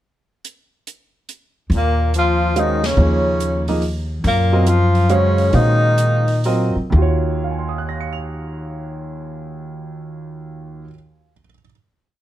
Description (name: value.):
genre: modal jazz.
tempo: 121-142 BPM.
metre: 3/4.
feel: swing 65% on 8ths.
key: Eb dorian.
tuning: A4 = 441 Hz.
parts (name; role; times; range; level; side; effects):
open jazz drum kit; drums; 0.4-6.6 s; hi-hat, ride cymbal, snare drum; -32 LUFS; right 2 dB; none.
brilliant trombone; second line; 1.7-6.4 s; Bb2 to F3; -24 LUFS; left 6 dB; none.
upright bass; bass; 1.7-10.8 s; Eb2 to Bb2; -18 LUFS; equal; none.
warm tenor saxophone; melody; 1.8-6.5 s; Bb3 to F4; -20 LUFS; equal; none.
warm concert grand piano; accompaniment; 2.6-11.7 s; Eb2 to F7; -22 LUFS; right 2 dB; none.
room: light reverb.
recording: close, detailed microphones.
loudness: -15 LUFS.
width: side -13 dB against mid.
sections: 0.4-1.7 pickup bar; 1.7-6.9 A section; 6.9-9.9 final chord.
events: band accent 2.8; slowing down 4.2-6.9.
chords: 0.4 N.C.; 1.7 Ebm9.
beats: | 0.44 0.86 1.29 | 1.71 2.13 2.56 | 2.98 3.40 3.82 | 4.25 4.67 5.10 | 5.54 5.99 6.45 | 6.94 7.43 7.92 | 8.42 8.91 9.41.